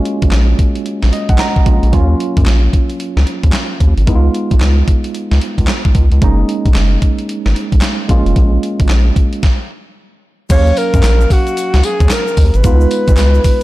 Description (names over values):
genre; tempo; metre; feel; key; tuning
R&B, new jack swing; 112 BPM; 4/4; swing 62% on 16ths; Eb minor; A4 = 440 Hz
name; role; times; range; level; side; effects
tine electric piano; accompaniment; 0.0-13.6 s; Gb3 to Bb5; -19 LUFS; right 2 dB; medium stereo tremolo
gated 80s digital drum machine; drums; 0.1-13.6 s; crash cymbal, handclaps, hi-hat, kick drum, snare drum, tambourine; -14 LUFS; equal; gated reverb, gated reverb snare
round analog bass; bass; 0.2-13.4 s; F1 to Gb2; -11 LUFS; equal; none
breathy alto saxophone; melody; 10.5-13.6 s; Gb4 to Db5; -16 LUFS; equal; none
tube shaker; percussion; 10.5-13.6 s; none; -36 LUFS; left 10 dB; none
room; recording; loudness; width
little or no reverb; dark, warm production; -10 LUFS; side -17 dB against mid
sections
0.0-10.5 A section; 10.5-13.6 B section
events
tine electric piano fill 0.9-1.9; stop 9.4-10.5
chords
0.0 Bbm7; 4.1 Db7; 6.2 Gb69; 8.1 Bbm7; 10.5 Ebm7; 12.6 Db7